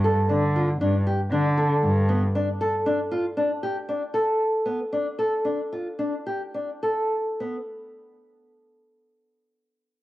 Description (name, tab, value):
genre	contemporary instrumental, contemporary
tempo	100-117 BPM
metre	5/4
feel	straight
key	G mixolydian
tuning	A4 = 440 Hz
part	nylon-string guitar	arpeggios	0.0-7.6 s	B3 to A4	-24 LUFS	equal	cassette tape
part	dark cello	bass	0.0-2.2 s	G2 to D3	-22 LUFS	equal	none
room	light reverb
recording	home recording on cassette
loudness	-22 LUFS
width	side -15 dB against mid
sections	0.0-7.7 A section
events	slowing down 3.4-7.7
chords	0.0 Gsus2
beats	0.29 0.80 1.31 1.83 | 2.34 2.85 3.36 3.87 4.39 | 4.92 5.45 5.99 6.55 7.12